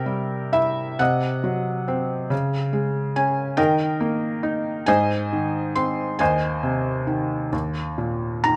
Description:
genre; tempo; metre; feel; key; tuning
classical, lyrical solo piano; 43-48 BPM (dotted quarters); 6/8; rubato; Ab major; A4 = 438 Hz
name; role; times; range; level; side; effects
felt-muted upright piano; solo; 0.0-8.6 s; Eb2 to C6; -23 LUFS; equal; none
room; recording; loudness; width
light reverb; close, detailed microphones; -23 LUFS; mono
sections
0.0-8.6 A section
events
none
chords
0.0 C7; 1.0 Cdim; 2.3 Db5; 3.6 Eb; 4.9 Ab; 6.2 Ab/Eb; 7.5 Eb5

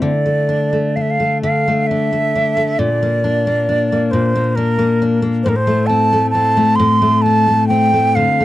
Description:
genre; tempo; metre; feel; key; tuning
celtic folk, Celtic slow air; 67 BPM; 3/4; rubato; D minor; A4 = 437 Hz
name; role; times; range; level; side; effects
bright wooden flute; melody; 0.0-8.4 s; Bb4 to C6; -16 LUFS; right 2 dB; none
picked steel-string acoustic guitar; accompaniment; 0.0-8.4 s; A2 to E4; -16 LUFS; left 2 dB; none
room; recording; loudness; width
light reverb; dry, close 1970s-style studio recording; -13 LUFS; side -14 dB against mid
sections
0.0-8.4 A section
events
none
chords
0.0 Dsus2; 2.8 Bb; 5.4 Am

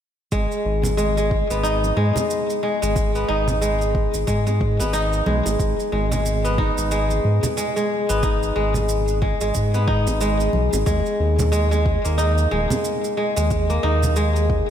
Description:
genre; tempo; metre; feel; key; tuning
organic downtempo; 91 BPM; 4/4; swing 59% on 16ths; G# minor; A4 = 440 Hz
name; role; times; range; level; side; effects
kora; arpeggios; 0.3-14.7 s; G#3 to D#4; -21 LUFS; left 1 dB; ping-pong delay, slapback echo
round analog bass; bass; 0.3-14.6 s; D#1 to G#2; -21 LUFS; equal; sidechain pumping
electronic kick drum; drums; 0.3-14.7 s; none; -24 LUFS; equal; overdrive
shaker; drums; 0.3-14.5 s; none; -34 LUFS; right 5 dB; overdrive
congas and bongos; percussion; 0.8-14.1 s; none; -30 LUFS; right 2 dB; none
room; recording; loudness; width
moderate concert hall reverb, RT60 2.4 s; big arena sound; -18 LUFS; side -9 dB against mid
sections
0.3-14.7 A section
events
none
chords
0.3 G#m; 10.9 D#5

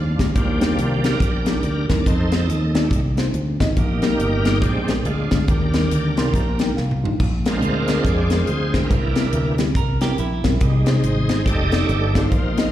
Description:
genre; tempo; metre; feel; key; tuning
uptempo gospel; 140 BPM; 4/4; swing 61% on 8ths; Eb major; A4 = 440 Hz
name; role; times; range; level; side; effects
bright tonewheel organ; sustained chords; 0.0-12.7 s; E3 to Eb5; -24 LUFS; right 2 dB; slow rotary speaker, chorus vibrato
fingered electric bass; bass; 0.0-12.7 s; F1 to F2; -21 LUFS; equal; none
mellow tine electric piano; accompaniment; 0.2-12.7 s; Bb2 to C6; -25 LUFS; left 2 dB; medium stereo tremolo, slapback echo
tight funk drum kit; drums; 0.2-12.7 s; hi-hat, kick drum, snare drum, splash cymbal, toms; -22 LUFS; equal; none
clean electric guitar; second line; 9.8-10.6 s; E4 to Bb4; -29 LUFS; right 7 dB; slapback echo
room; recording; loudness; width
light reverb, small room ambience; live gig heard through the venue's PA, recital hall reverb; -17 LUFS; side -12 dB against mid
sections
0.0-12.7 A section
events
tonewheel organ solo 0.0-12.7; tine electric piano fill 5.9-7.2; drum fill 6.8-7.2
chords
0.4 Ebmaj7; 2.1 F7; 3.8 Eb/Bb; 4.6 Bb7; 5.5 Ebmaj7; 7.2 Bb7; 8.9 C7; 10.6 Fm7/C; 11.5 F13

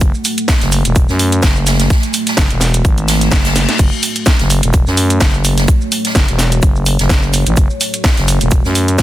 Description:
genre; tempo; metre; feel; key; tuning
bass house; 127 BPM; 4/4; swing 55% on 16ths; F# minor; A4 = 442 Hz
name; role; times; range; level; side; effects
deep dark ambient pad; sustained chords; 0.0-9.0 s; A3 to F#5; -22 LUFS; right 2 dB; chorus, built-in reverb, sidechain pumping
growling FM bass; bass; 0.0-9.0 s; E1 to F#2; -14 LUFS; equal; overdrive, sidechain pumping
electronic kick drum; drums; 0.0-9.0 s; none; -12 LUFS; equal; studio ambience
garage drum kit; drums; 0.0-9.0 s; crash cymbal, hi-hat, shaker, snare drum; -17 LUFS; right 1 dB; studio ambience
shaker and snare drum; drums; 0.0-9.0 s; none; -24 LUFS; right 2 dB; high-pass filter on snare, studio ambience, sidechain pumping on perc, high-pass filter on perc, high-pass filter on room
reverse cymbal; sound effects; 3.1-3.8 s; none; -24 LUFS; left 8 dB; none
room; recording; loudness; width
little or no reverb; dense, heavily limited modern master; -10 LUFS; side -14 dB against mid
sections
0.0-9.0 A section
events
reverse cymbal 3.1-3.8; drum fill 3.6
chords
0.0 F#m

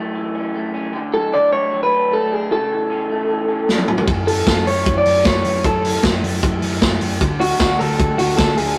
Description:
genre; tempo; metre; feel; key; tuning
jangly indie pop; 153 BPM; 4/4; straight; F# minor; A4 = 438 Hz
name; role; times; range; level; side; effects
electric guitar through a small old amp; arpeggios; 0.0-8.8 s; F#2 to D4; -27 LUFS; equal; none
electric guitar through a small old amp; melody; 1.1-8.8 s; F#4 to D5; -20 LUFS; equal; slapback echo
vintage drum kit; drums; 3.7-8.7 s; hi-hat, kick drum, ride cymbal, snare drum, toms; -20 LUFS; equal; none
vintage muted picked electric bass; bass; 4.1-8.7 s; D2 to F#2; -26 LUFS; equal; none
room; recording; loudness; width
moderate stone room reverb, RT60 1.3 s; rough rehearsal-room recording, warm saturation; -18 LUFS; mono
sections
0.0-8.8 A section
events
drum fill 3.7-4.1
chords
0.0 F#m7; 0.9 D; 2.5 A/C#; 4.1 F#m7; 7.2 D

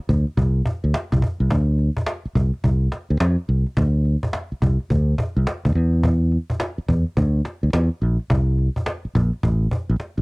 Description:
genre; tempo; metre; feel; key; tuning
R&B, new jack swing; 106 BPM; 4/4; swing 64% on 16ths; D minor; A4 = 441 Hz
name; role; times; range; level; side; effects
fingered electric bass; bass; 0.1-10.2 s; A1 to F2; -18 LUFS; equal; none
cajon; drums; 0.1-10.2 s; none; -24 LUFS; equal; cassette tape
room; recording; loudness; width
little or no reverb; home recording on cassette; -18 LUFS; side -32 dB against mid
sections
0.0-10.2 A section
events
drum fill 10.0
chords
none

